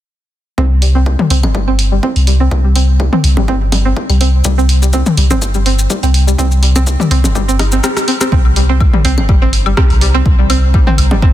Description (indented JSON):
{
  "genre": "minimal techno",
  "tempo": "124 BPM",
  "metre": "4/4",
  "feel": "swing 54% on 16ths",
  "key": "C minor",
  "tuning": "A4 = 440 Hz",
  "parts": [
    { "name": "string-like resonator pluck", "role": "riff", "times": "0.6-11.3 s", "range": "G3 to Eb4", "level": "-18 LUFS", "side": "right 1 dB", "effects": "chorus, sidechain pumping, ping-pong delay" },
    { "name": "punchy sub bass", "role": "bass", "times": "0.6-11.3 s", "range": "G1 to C2", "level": "-11 LUFS", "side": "equal", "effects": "tube saturation, sidechain pumping" },
    { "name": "electronic kick drum", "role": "drums", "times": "0.6-11.3 s", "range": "none", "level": "-14 LUFS", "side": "equal", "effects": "high-pass filter on kick, high-pass filter on room" },
    { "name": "punchy analog drum machine", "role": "drums", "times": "0.8-11.1 s", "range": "hi-hat, rim click", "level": "-19 LUFS", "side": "right 1 dB", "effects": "soft clipping on snare" },
    { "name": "electronic toms, bongos, claves and woodblock", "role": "percussion", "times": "1.2-11.2 s", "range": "none", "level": "-19 LUFS", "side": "left 3 dB", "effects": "overdrive, tape echo" },
    { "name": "maracas", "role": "percussion", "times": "4.4-8.3 s", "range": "none", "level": "-23 LUFS", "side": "left 2 dB", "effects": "none" },
    { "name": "granular cloud pad", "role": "texture", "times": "9.6-11.3 s", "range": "Eb4 to Bb5", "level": "-32 LUFS", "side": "right 2 dB", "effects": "none" }
  ],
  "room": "little or no reverb",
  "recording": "dense, heavily limited modern master",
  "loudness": "-9 LUFS",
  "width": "side -13 dB against mid",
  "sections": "0.6-8.3 A section; 8.3-11.3 B section",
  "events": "filter sweep on synth pluck 0.6-8.3; drum fill 7.6-8.3",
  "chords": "0.6 C5; 8.3 Cm7"
}